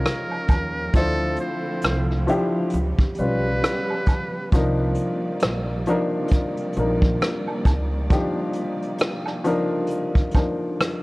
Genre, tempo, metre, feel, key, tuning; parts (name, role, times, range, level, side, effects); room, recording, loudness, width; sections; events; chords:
lo-fi hip hop; 67 BPM; 4/4; swing 58% on 16ths; A4 = 443 Hz
trumpet with metal mute; melody; 0.0-4.5 s; A4 to C5; -30 LUFS; right 1 dB
warm upright piano; accompaniment; 0.0-11.0 s; F3 to C5; -25 LUFS; left 1 dB
warm studio string section; sustained chords; 0.0-11.0 s; C3 to D5; -30 LUFS; right 1 dB
vintage brush drum kit; drums; 0.1-11.0 s; hi-hat, kick drum, rim click; -21 LUFS; equal
egg shaker and woodblock; percussion; 0.1-11.0 s; -35 LUFS; right 2 dB
upright bass; bass; 0.5-8.1 s; Bb1 to Eb2; -25 LUFS; equal
light reverb, small room ambience; worn, warbling old tape, cassette tape, warbly pitch drift; -20 LUFS; side -22 dB against mid
0.0-11.0 A section
0.0 Db69; 0.9 Dm9; 2.7 Db7#11; 4.5 Cm11